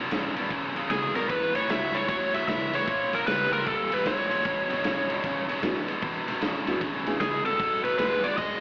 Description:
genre	electric blues shuffle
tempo	152 BPM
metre	4/4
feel	swing 64% on 8ths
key	unclear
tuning	A4 = 440 Hz
part	biting overdriven guitar	riff	0.0-8.6 s	E2 to G#3	-29 LUFS	equal	none
part	upright bass	bass	0.0-8.6 s	E1 to G2	-42 LUFS	equal	none
part	raw garage drum kit	drums	0.1-8.5 s	kick drum, ride cymbal, snare drum	-31 LUFS	equal	vintage 12-bit sampler grit
part	overdriven slide guitar	melody	0.9-8.6 s	G#4 to E5	-26 LUFS	equal	none
part	honky-tonk upright piano	accompaniment	5.6-7.2 s	G#3 to G#4	-31 LUFS	equal	slapback echo
room	light reverb, small room ambience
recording	live gig heard through the venue's PA, recital hall reverb, vinyl crackle, AM radio sound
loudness	-24 LUFS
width	side -31 dB against mid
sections	0.0-8.6 A section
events	none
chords	0.0 E; 1.3 A; 2.9 A#dim7; 4.5 E7; 7.6 B7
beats	0.11 0.51 0.90 | 1.29 1.69 2.08 2.48 | 2.88 3.27 3.66 4.06 | 4.45 4.84 5.24 5.63 | 6.02 6.42 6.81 7.20 | 7.59 7.99 8.38

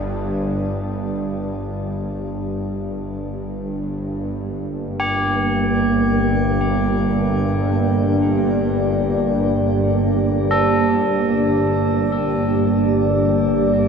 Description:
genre	dark ambient drone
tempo	free time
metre	none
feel	none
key	G minor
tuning	A4 = 439 Hz
part	tubular bells	arpeggios	0.0-13.9 s	D4 to A4	-26 LUFS	left 1 dB	ping-pong delay, shimmer reverb
part	bowed-like drone	drone	0.0-13.9 s	G1 to G2	-21 LUFS	equal	built-in reverb
part	deep dark ambient pad	sustained chords	4.8-13.9 s	Bb3 to D5	-19 LUFS	right 1 dB	chorus, built-in reverb, shimmer reverb
room	wet cathedral reverb, RT60 5.5 s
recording	dark, warm production, nothing above 10.9 kHz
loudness	-17 LUFS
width	side -6 dB against mid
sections	0.0-4.4 A section; 4.4-13.9 B section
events	none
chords	0.0 G5; 4.4 Gm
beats	free time

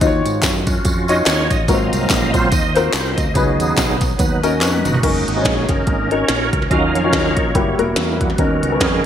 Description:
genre	uptempo gospel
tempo	143 BPM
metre	4/4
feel	swing 58% on 8ths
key	F# major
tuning	A4 = 440 Hz
part	dark grand piano	accompaniment	0.0-9.1 s	G#2 to C#5	-20 LUFS	left 3 dB	analog chorus
part	fingered electric bass	bass	0.0-9.0 s	E1 to G#2	-23 LUFS	equal	none
part	minimal click drum kit	drums	0.0-8.9 s	crash cymbal, hi-hat, kick drum, snare drum, toms	-19 LUFS	equal	overdrive, gated reverb
part	tambourine and handclaps	percussion	0.0-4.9 s	none	-26 LUFS	left 1 dB	none
part	bright tonewheel organ	sustained chords	0.7-9.1 s	D#3 to E#5	-20 LUFS	right 3 dB	fast rotary speaker, chorus vibrato
room	moderate lush hall reverb, RT60 2.3 s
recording	bright 1980s-style digital production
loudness	-14 LUFS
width	side -9 dB against mid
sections	0.0-5.0 A section; 5.0-9.1 B section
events	tonewheel organ solo 0.0-5.0, 5.0-9.1; drum fill 4.6-5.0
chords	0.0 D#m9; 1.7 G#13; 3.4 C#9sus4; 5.0 F#6; 6.7 D#m9; 7.5 F#7b9; 8.4 Bmaj9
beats	| 0.01 0.43 0.85 1.27 | 1.69 2.10 2.52 2.94 | 3.36 3.78 4.19 4.61 | 5.03 5.45 5.87 6.29 | 6.71 7.12 7.54 7.96 | 8.38 8.80

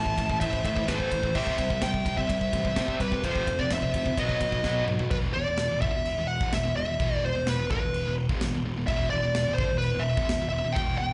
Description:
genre	heavy metal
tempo	127 BPM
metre	4/4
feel	straight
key	E minor from 5.1 s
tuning	A4 = 435 Hz
part	smooth overdriven lead guitar	melody	0.0-11.1 s	B4 to A5	-31 LUFS	equal	slapback echo, digital delay
part	high-gain lead guitar	second line	0.0-4.8 s	G4 to E5	-42 LUFS	equal	distortion, slapback echo
part	heavy high-gain guitar	riff	0.0-5.1 s	F2 to C4	-35 LUFS	equal	distortion, slapback echo
part	tight distorted guitar	riff	0.0-11.1 s	E2 to C4	-37 LUFS	equal	distortion, slapback echo
part	fuzz picked electric bass	bass	0.0-11.1 s	E1 to C3	-34 LUFS	equal	overdrive
part	modern studio drum kit	drums	0.1-10.9 s	crash cymbal, kick drum, ride cymbal, snare drum, toms	-34 LUFS	equal	none
room	light reverb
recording	live gig heard through the venue's PA, club reverb, nothing above 10.5 kHz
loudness	-27 LUFS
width	mono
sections	0.0-5.1 A section; 5.1-11.1 B section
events	drum fill 4.6-5.1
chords	0.0 Am; 1.3 C; 3.2 F5; 4.2 B; 5.1 E5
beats	0.41 0.88 | 1.35 1.82 2.29 2.76 | 3.23 3.70 4.17 4.64 | 5.11 5.58 6.05 6.53 | 7.00 7.47 7.94 8.41 | 8.88 9.35 9.82 10.30 | 10.77

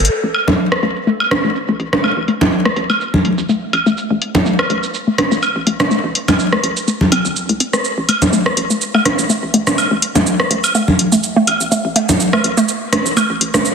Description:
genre	minimal techno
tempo	124 BPM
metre	4/4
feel	swing 55% on 16ths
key	A minor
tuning	A4 = 441 Hz
part	hollow knocking FM bass	bass	0.0-13.6 s	E1 to A2	-24 LUFS	equal	high-pass filter
part	electronic hi-hat and shaker	drums	0.0-13.7 s	none	-20 LUFS	equal	low-pass filter on hats, low-pass filter on snare, low-pass filter on perc
part	hollow square pluck	riff	0.2-13.6 s	A3 to C4	-18 LUFS	left 1 dB	chorus, dub echo
part	electronic woodblock, bongos, congas and rim click	percussion	0.3-13.6 s	none	-15 LUFS	right 1 dB	ping-pong delay
room	moderate lush hall reverb, RT60 2.0 s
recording	heavily compressed radio sound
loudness	-13 LUFS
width	side -6 dB against mid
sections	0.1-13.7 A section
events	filter sweep on synth arpeggio sound 0.1-13.7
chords	none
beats	| 0.10 0.59 1.07 1.55 | 2.04 2.52 3.01 3.49 | 3.97 4.46 4.94 5.43 | 5.91 6.39 6.88 7.36 | 7.84 8.33 8.81 9.30 | 9.78 10.26 10.75 11.23 | 11.72 12.20 12.68 13.17 | 13.65

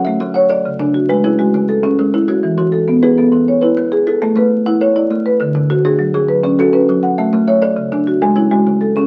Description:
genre	southern african traditional, mbira-style interlocking cycle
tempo	135 BPM (dotted quarters)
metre	12/8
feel	straight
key	A major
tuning	A4 = 440 Hz
part	kalimba	arpeggios	0.0-9.1 s	C#3 to F#5	-22 LUFS	equal	none
part	marimba with soft mallets	arpeggios	0.0-9.1 s	C#3 to F#5	-15 LUFS	equal	none
room	moderate studio reverb, RT60 0.6 s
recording	very old 78 rpm record, vinyl crackle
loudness	-14 LUFS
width	mono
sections	0.0-4.2 A section; 4.2-9.1 B section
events	none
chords	0.0 A; 0.7 C#m; 2.4 E; 4.2 A; 5.1 D; 6.0 F#m; 6.9 A; 7.8 C#m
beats	0.21 | 0.66 1.10 1.55 1.99 | 2.44 2.88 3.33 3.77 | 4.22 4.66 5.11 5.55 | 6.00 6.44 6.89 7.33 | 7.78 8.22 8.66

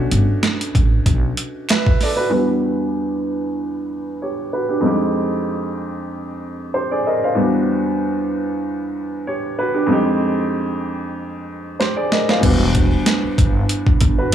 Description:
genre	hip hop, boom-bap hip-hop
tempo	95 BPM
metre	4/4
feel	swing 55% on 16ths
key	unclear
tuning	A4 = 440 Hz
part	dark upright piano	accompaniment	0.0-14.3 s	E2 to F5	-19 LUFS	equal	cassette tape, high-pass filter, low-pass filter
part	upright bass	bass	0.0-1.3, 12.4-14.3 s	E1 to B1	-18 LUFS	equal	none
part	boom bap sampler-style drum kit	drums	0.1-2.2, 11.8-14.3 s	crash cymbal, hi-hat, kick drum, snare drum	-17 LUFS	right 1 dB	overdrive
part	finger snap	percussion	0.4-1.9 s	none	-30 LUFS	right 9 dB	none
room	light reverb, small room ambience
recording	none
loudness	-16 LUFS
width	side -10 dB against mid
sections	0.0-2.3 A section; 2.3-12.4 B section; 12.4-14.3 A section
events	filter sweep on upright piano 2.3-12.4; drum fill 11.8-12.4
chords	0.0 Bm9; 2.3 Em7; 4.9 Fm7; 7.4 Em7; 9.9 Fm7; 12.4 Em9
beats	0.43 1.06 1.69 | 2.33 2.96 3.59 4.22 | 4.85 5.48 6.12 6.75 | 7.38 8.01 8.64 9.27 | 9.90 10.54 11.17 11.80 | 12.43 13.06 13.69 14.33

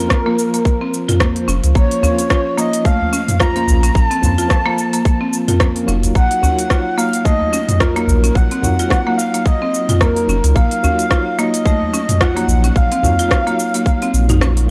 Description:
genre	organic downtempo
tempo	109 BPM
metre	4/4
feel	swing 57% on 16ths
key	Bb harmonic minor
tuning	A4 = 440 Hz
part	breathy flute-like synth lead	melody	0.0-14.4 s	Bb4 to Bb5	-22 LUFS	equal	lush chorus, cassette tape, tape echo
part	tine electric piano	accompaniment	0.0-14.7 s	F3 to C5	-26 LUFS	equal	medium tremolo, sidechain pumping, tape echo
part	buzzing marimba with medium hard mallets	arpeggios	0.0-14.6 s	A3 to F4	-23 LUFS	equal	tape echo
part	electronic kick drum	drums	0.1-14.0 s	none	-18 LUFS	equal	overdrive
part	organic electronic drum kit	drums	0.1-14.7 s	hi-hat, rim click, shaker, toms	-21 LUFS	equal	overdrive
part	warm sub bass	bass	1.5-14.7 s	F1 to Db2	-17 LUFS	equal	sidechain pumping
part	udu	percussion	2.0-13.2 s	none	-22 LUFS	equal	none
room	light reverb, digital ambience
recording	dry, gritty hardware recording, transformer saturation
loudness	-15 LUFS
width	mono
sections	0.0-14.7 A section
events	kick drops out 14.4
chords	0.0 Bbmadd9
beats	0.10 0.65 1.20 | 1.75 2.30 2.85 3.40 | 3.95 4.50 5.05 5.61 | 6.16 6.71 7.26 7.81 | 8.36 8.91 9.46 10.01 | 10.56 11.11 11.66 12.21 | 12.76 13.31 13.86 14.41

